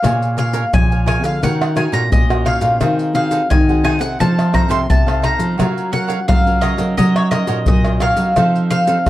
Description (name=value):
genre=samba and choro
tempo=86 BPM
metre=4/4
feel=straight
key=Bb minor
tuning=A4 = 440 Hz
part: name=mandolin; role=melody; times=0.0-9.1 s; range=Db5 to C6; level=-19 LUFS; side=equal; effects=plate reverb
part: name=cavaquinho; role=accompaniment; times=0.0-9.0 s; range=Eb4 to Ab5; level=-26 LUFS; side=right 6 dB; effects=none
part: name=nylon-string guitar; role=accompaniment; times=0.0-9.1 s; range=Bb2 to Db5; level=-22 LUFS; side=equal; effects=none
part: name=nylon-string guitar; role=bass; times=0.0-9.1 s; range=Bb2 to Gb3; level=-19 LUFS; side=right 1 dB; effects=none
part: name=maracas, surdo, pandeiro and tamborim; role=percussion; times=0.0-9.1 s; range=none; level=-18 LUFS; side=left 1 dB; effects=none
room=moderate studio ambience, RT60 0.5 s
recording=dark, warm production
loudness=-13 LUFS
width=side -15 dB against mid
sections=0.0-9.1 A section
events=none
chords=0.0 Bbm7; 1.4 Ebm7; 2.8 Ab7/Eb; 4.2 F7; 5.6 Gbmaj7; 7.0 Ebm7; 8.4 F7